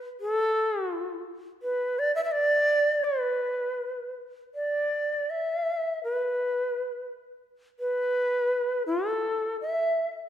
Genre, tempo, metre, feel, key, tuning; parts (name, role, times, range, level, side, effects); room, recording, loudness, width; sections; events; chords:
japanese traditional, Japanese chamber music; 83 BPM; 2/4; rubato; A4 = 440 Hz
bright reedy shakuhachi; solo; 0.2-10.1 s; A4 to E5; -25 LUFS; equal
moderate scoring stage reverb, RT60 1.7 s; -25 LUFS; side -10 dB against mid
0.0-10.3 A section